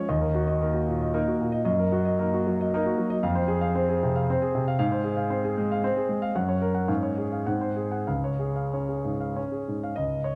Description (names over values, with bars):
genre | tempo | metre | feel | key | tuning
classical, romantic triple-time dance for piano with dotted rhythms | 88-124 BPM | 3/4 | rubato | Db major | A4 = 440 Hz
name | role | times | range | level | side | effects
warm grand piano | solo | 0.0-10.4 s | Db2 to Gb5 | -26 LUFS | equal | none
room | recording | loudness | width
wet recital hall reverb, RT60 1.5 s | dark, warm production | -26 LUFS | mono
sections
0.0-10.0 A section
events
none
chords
0.1 Ebm; 1.6 Ebm/Gb; 3.2 Fm; 4.8 Fm/Ab; 6.4 Gb; 6.9 Db/Ab; 7.5 Ab7; 8.1 Db